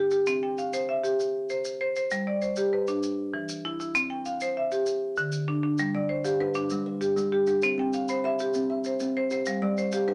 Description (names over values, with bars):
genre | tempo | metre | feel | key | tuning
southern african traditional, mbira-style interlocking cycle | 131 BPM (dotted quarters) | 12/8 | straight | unclear | A4 = 444 Hz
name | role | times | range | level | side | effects
marimba with hard mallets | arpeggios | 0.0-10.1 s | D3 to G5 | -28 LUFS | equal | none
maracas | percussion | 0.1-10.1 s | none | -44 LUFS | equal | none
kalimba | arpeggios | 5.9-10.1 s | G3 to B5 | -33 LUFS | equal | none
room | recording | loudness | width
moderate studio ambience, RT60 0.5 s | none | -28 LUFS | mono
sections
0.0-10.1 A section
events
none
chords
0.3 C; 2.1 G; 3.0 E5; 3.9 C; 4.9 N.C.; 5.8 G; 7.6 C; 9.5 G